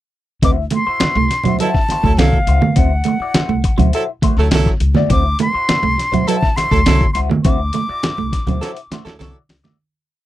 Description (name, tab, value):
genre	funk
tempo	102 BPM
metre	4/4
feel	straight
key	D mixolydian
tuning	A4 = 440 Hz
part	concert flute	melody	0.4-9.2 s	F5 to D6	-20 LUFS	left 1 dB	none
part	electric guitar at the edge of break-up	accompaniment	0.4-9.8 s	E4 to D5	-25 LUFS	left 7 dB	wah
part	clean electric guitar	riff	0.4-9.8 s	F#3 to C4	-20 LUFS	right 8 dB	none
part	upright bass	bass	0.4-9.6 s	C2 to D2	-18 LUFS	left 1 dB	none
part	dusty soul sampler-style drum kit	drums	0.4-9.8 s	hi-hat, kick drum, snare drum	-17 LUFS	left 1 dB	none
part	congas	percussion	0.4-9.8 s	none	-21 LUFS	right 3 dB	none
part	warm horn section	second line	1.6-9.4 s	F#3 to A4	-21 LUFS	right 5 dB	none
room	little or no reverb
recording	dry, close 1970s-style studio recording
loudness	-13 LUFS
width	side -14 dB against mid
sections	0.4-9.8 groove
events	fade-out 7.4-9.8; drum fill 8.6-9.8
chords	0.4 D9